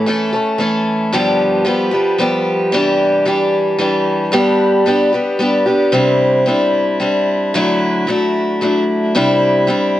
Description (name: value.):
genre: rock.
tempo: 112 BPM.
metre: 3/4.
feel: straight.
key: unclear.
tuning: A4 = 439 Hz.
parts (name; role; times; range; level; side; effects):
picked acoustic archtop guitar; solo; 0.0-10.0 s; G2 to A4; -12 LUFS; equal; none.
room: light reverb.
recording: worn, warbling old tape, cassette tape, warbly pitch drift.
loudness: -12 LUFS.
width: side -13 dB against mid.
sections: 0.0-2.7 A section; 2.7-10.0 B section.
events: none.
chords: 0.0 A; 1.1 G7; 2.7 Cadd9; 4.3 G; 5.9 Cadd9; 7.5 Dadd9; 9.2 Cadd9.